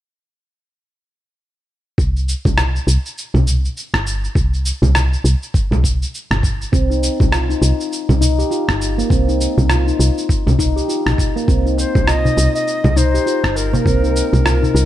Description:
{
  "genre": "organic downtempo",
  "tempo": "101 BPM",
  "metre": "4/4",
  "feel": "swing 59% on 16ths",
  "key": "C minor pentatonic",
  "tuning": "A4 = 440 Hz",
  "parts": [
    { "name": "woody FM bass", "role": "bass", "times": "2.0-14.9 s", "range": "G1 to C2", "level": "-16 LUFS", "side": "equal", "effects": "sidechain pumping" },
    { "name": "electronic kick drum", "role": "drums", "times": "2.0-14.0 s", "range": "none", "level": "-17 LUFS", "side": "equal", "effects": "none" },
    { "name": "electronic shaker, congas and rim click", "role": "drums", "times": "2.0-14.9 s", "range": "none", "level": "-21 LUFS", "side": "right 1 dB", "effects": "none" },
    { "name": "handpan", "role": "arpeggios", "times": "6.7-14.7 s", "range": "Bb3 to G4", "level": "-20 LUFS", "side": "left 1 dB", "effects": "tape echo" },
    { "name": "bright reedy Native American-style cedar flute", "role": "melody", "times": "11.8-14.9 s", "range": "Bb4 to Eb5", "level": "-20 LUFS", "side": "left 1 dB", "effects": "digital delay" },
    { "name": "darbuka", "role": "percussion", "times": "11.8-14.9 s", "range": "none", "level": "-23 LUFS", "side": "left 1 dB", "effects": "none" }
  ],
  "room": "light reverb, studio ambience",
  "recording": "dark, warm production",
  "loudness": "-14 LUFS",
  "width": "side -13 dB against mid",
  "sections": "2.0-14.9 A section",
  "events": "none",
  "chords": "2.0 Cm",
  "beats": "| 1.98 2.57 3.16 3.76 | 4.35 4.95 5.54 6.13 | 6.73 7.32 7.92 8.51 | 9.10 9.70 10.29 10.89 | 11.48 12.07 12.67 13.26 | 13.86 14.45"
}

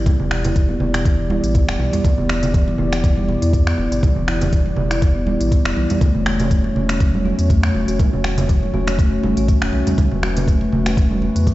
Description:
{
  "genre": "afro house",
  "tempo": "121 BPM",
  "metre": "4/4",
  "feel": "swing 54% on 16ths",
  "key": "E dorian",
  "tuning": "A4 = 440 Hz",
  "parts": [
    { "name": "dark analog pad", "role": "sustained chords", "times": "0.0-11.5 s", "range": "A3 to D5", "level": "-26 LUFS", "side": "left 1 dB", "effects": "chorus, sidechain pumping" },
    { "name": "warm sub bass", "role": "bass", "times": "0.0-11.5 s", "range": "D1 to E2", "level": "-22 LUFS", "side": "equal", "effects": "tube saturation, sidechain pumping" },
    { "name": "kalimba", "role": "arpeggios", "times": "0.1-11.5 s", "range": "B2 to F#4", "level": "-22 LUFS", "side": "equal", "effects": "sidechain pumping, low-pass filter, tape echo" },
    { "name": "afro-pop drum kit", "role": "drums", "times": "0.1-11.5 s", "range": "finger snaps, hi-hat, toms", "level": "-26 LUFS", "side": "equal", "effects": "none" },
    { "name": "electronic kick drum", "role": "drums", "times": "0.1-11.5 s", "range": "none", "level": "-16 LUFS", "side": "equal", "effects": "none" },
    { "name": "congas", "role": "percussion", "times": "0.1-11.5 s", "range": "none", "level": "-24 LUFS", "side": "right 3 dB", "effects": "none" }
  ],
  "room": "digital ambience",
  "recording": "played on a big sound system in a bare room, stone room reverb, nothing above 7.8 kHz",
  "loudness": "-15 LUFS",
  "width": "side -16 dB against mid",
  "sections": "0.0-11.5 A section",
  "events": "none",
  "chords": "0.0 Em7; 6.0 F#m/E",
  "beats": "| 0.06 0.56 1.05 1.55 | 2.05 2.54 3.04 3.53 | 4.03 4.53 5.02 5.52 | 6.01 6.51 7.00 7.50 | 8.00 8.49 8.99 9.48 | 9.98 10.48 10.97 11.47"
}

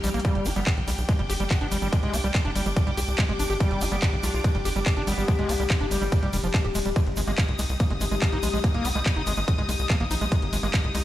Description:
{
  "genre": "psychedelic trance",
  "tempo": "143 BPM",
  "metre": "4/4",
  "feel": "straight",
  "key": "G phrygian dominant",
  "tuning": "A4 = 440 Hz",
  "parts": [
    { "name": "evolving wavetable pad", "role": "sustained chords", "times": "0.0-11.0 s", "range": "G3 to G4", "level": "-34 LUFS", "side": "left 5 dB", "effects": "phaser, built-in reverb, sidechain pumping" },
    { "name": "overdriven acid bass", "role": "riff", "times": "0.0-11.0 s", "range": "F3 to G4", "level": "-31 LUFS", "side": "right 1 dB", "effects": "distortion, auto-pan, sidechain pumping, digital delay" },
    { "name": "tight sequencer bass", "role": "bass", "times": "0.0-11.0 s", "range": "D1 to C2", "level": "-27 LUFS", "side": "equal", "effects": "none" },
    { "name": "drum and bass drum kit", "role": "drums", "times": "0.0-11.0 s", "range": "handclaps, hi-hat, ride cymbal", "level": "-32 LUFS", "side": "equal", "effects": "none" },
    { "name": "tube shaker", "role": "percussion", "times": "0.0-11.0 s", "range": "none", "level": "-40 LUFS", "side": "right 4 dB", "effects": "none" },
    { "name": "rich studio string section", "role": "texture", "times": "0.0-11.0 s", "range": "D4 to F6", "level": "-33 LUFS", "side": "left 1 dB", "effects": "sidechain pumping" },
    { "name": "electronic kick drum", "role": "drums", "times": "0.2-10.8 s", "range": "none", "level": "-22 LUFS", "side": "equal", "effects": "none" },
    { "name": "metallic wobble bass", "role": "second line", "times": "0.6-11.0 s", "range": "G3 to F4", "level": "-41 LUFS", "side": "left 3 dB", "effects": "none" }
  ],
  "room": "light reverb",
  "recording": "played on a big sound system in a bare room, stone room reverb",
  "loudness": "-22 LUFS",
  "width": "side -14 dB against mid",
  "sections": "0.0-11.0 A section",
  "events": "drum fill 0.0",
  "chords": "0.2 G5; 7.0 Ab5",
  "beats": "| 0.25 0.67 1.09 1.51 | 1.93 2.35 2.77 3.18 | 3.60 4.02 4.44 4.86 | 5.28 5.70 6.12 6.54 | 6.96 7.38 7.80 8.22 | 8.64 9.06 9.48 9.90 | 10.32 10.74"
}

